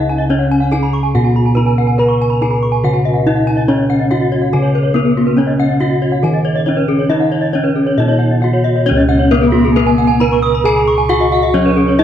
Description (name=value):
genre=Balinese gamelan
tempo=139 BPM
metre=4/4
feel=uneven beats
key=Db slendro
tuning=A4 = 439 Hz
part: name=gamelan-type bronze metallophone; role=melody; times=0.0-12.0 s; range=Cb4-45c to Cb5-45c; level=-16 LUFS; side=equal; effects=none
part: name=gamelan-type bronze metallophone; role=arpeggios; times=0.0-12.0 s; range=Gb4-35c to Eb6+30c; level=-21 LUFS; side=right 4 dB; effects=none
part: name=gamelan-type bossed gongs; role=bass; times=0.0-12.0 s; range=Db2 to Cb5-45c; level=-14 LUFS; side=equal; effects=none
part: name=gamelan-type bronze metallophone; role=arpeggios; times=0.1-12.0 s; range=Gb4-35c to Db6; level=-20 LUFS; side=left 7 dB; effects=none
part: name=alto recorder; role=second line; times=9.5-12.0 s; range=Ab5+22c to Db6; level=-23 LUFS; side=right 2 dB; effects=none
room=moderate concert hall reverb, RT60 1.8 s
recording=dark, warm production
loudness=-11 LUFS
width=side -10 dB against mid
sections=0.0-8.9 A section; 8.9-12.0 B section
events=none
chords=none